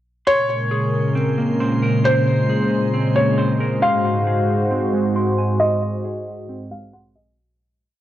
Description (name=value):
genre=hip hop, atmospheric cloud-rap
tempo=135 BPM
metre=4/4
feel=half-time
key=Bb minor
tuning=A4 = 440 Hz
part: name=felt-muted upright piano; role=melody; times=0.3-7.4 s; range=C5 to Gb5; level=-21 LUFS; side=left 1 dB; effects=tape echo
part: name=warm analog pad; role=sustained chords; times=0.3-7.3 s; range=Ab2 to C5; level=-19 LUFS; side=equal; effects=chorus
part: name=clean electric guitar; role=arpeggios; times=0.3-7.4 s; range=Ab3 to C6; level=-27 LUFS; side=right 2 dB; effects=tape echo
part: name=drifting glass-harmonics texture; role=texture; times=0.6-7.3 s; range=Ab3 to C6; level=-34 LUFS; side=right 4 dB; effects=chorus, built-in reverb
room=light reverb, digital ambience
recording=dry, gritty hardware recording, cassette tape, low-pass filter, nothing above 10.5 kHz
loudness=-16 LUFS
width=side -13 dB against mid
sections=0.3-7.4 breakdown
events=filter sweep 0.3-7.4; fade-out 5.6-7.4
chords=0.3 Bbm9; 3.8 Ab7